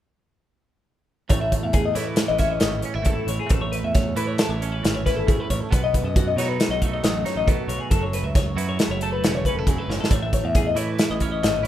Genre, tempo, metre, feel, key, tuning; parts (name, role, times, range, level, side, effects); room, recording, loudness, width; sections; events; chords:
math rock and midwest emo; 136 BPM; 5/4; straight; A lydian; A4 = 441 Hz
twelve-string electric guitar; accompaniment; 1.3-11.7 s; F#2 to E4; -29 LUFS; right 7 dB; spring reverb
twelve-string electric guitar; arpeggios; 1.3-11.7 s; F#4 to E5; -26 LUFS; left 5 dB; phaser, slapback echo
modern bright picked electric bass; bass; 1.3-11.6 s; E1 to B2; -28 LUFS; equal
modern studio drum kit; drums; 1.3-11.7 s; hi-hat, kick drum, snare drum; -22 LUFS; equal
light reverb; rough home demo mix; -20 LUFS; side -12 dB against mid
1.3-11.7 A section
drum fill 9.9
1.3 Amaj7; 5.7 B7; 7.9 F#m7; 10.1 Amaj7